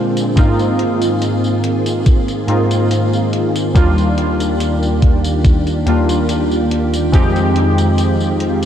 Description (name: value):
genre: vaporwave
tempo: 71 BPM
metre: 4/4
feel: straight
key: unclear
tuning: A4 = 440 Hz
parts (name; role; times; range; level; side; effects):
- warbly lo-fi synth keys; accompaniment; 0.0-8.7 s; Eb2 to G4; -15 LUFS; equal; lush chorus, diffuse ambient delay
- soft string machine; sustained chords; 0.0-8.7 s; D3 to Ab4; -20 LUFS; equal; ensemble chorus
- electronic hi-hat and tambourine; drums; 0.2-8.7 s; none; -29 LUFS; left 1 dB; overdrive
- electronic kick drum; drums; 0.4-7.3 s; none; -12 LUFS; equal; overdrive
room: moderate lush hall reverb, RT60 2.9 s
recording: dreamy mix soaked in reverb, cassette tape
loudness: -12 LUFS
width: side -9 dB against mid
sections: 0.0-8.7 A section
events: none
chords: 0.4 Ab69; 3.8 Ebmaj9; 7.1 Fm9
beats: | 0.37 1.22 2.06 2.91 | 3.75 4.60 5.45 6.29 | 7.13 7.98